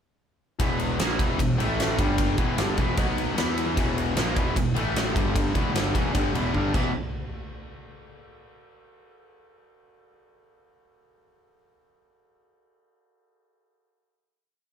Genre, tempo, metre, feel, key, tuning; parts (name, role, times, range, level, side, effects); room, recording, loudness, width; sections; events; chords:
hard rock; 152 BPM; 4/4; straight; A4 = 440 Hz
cranked stack guitar; riff; 0.6-6.9 s; E2 to E4; -31 LUFS; right 6 dB; overdrive
distorted electric guitar; riff; 0.6-6.9 s; E2 to E4; -30 LUFS; left 8 dB; overdrive
overdriven electric guitar; riff; 0.6-6.9 s; E2 to E4; -30 LUFS; equal
fuzz picked electric bass; bass; 0.6-6.9 s; E1 to E2; -30 LUFS; equal; overdrive
big rock drum kit; drums; 0.6-6.8 s; crash cymbal, kick drum, ride cymbal, snare drum; -27 LUFS; equal
moderate studio ambience, RT60 0.5 s; band playing live in one room; -22 LUFS; side -8 dB against mid
0.6-6.9 riff; 6.9-8.5 final hit
drum fill 6.5-6.9
0.6 E5; 1.6 A5; 2.0 G5; 2.4 E5; 3.0 B5; 3.4 E5; 4.8 A5; 5.2 G5; 5.6 E5; 6.9 N.C.